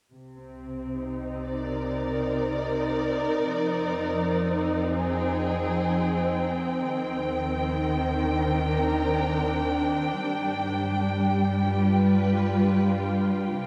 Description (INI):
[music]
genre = ambient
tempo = 71 BPM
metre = 4/4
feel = straight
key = C minor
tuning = A4 = 438 Hz
[part]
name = dark studio string section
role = sustained chords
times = 0.1-13.7 s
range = C3 to G5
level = -27 LUFS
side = equal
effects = shimmer reverb
[part]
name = warm sub bass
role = bass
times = 0.1-13.7 s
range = C2 to G2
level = -35 LUFS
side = equal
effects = tube saturation
[sound]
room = wet huge ambient reverb, RT60 8.3 s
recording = cassette tape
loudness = -26 LUFS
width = mono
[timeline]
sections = 0.1-13.7 A section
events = fade-in on sub bass 0.1-13.7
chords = 0.1 Cm7; 3.5 Fm7; 6.9 Cm7/Eb; 10.2 G7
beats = | 0.12 0.98 1.83 2.67 | 3.51 4.36 5.20 6.03 | 6.86 7.69 8.52 9.35 | 10.18 11.02 11.86 12.72 | 13.58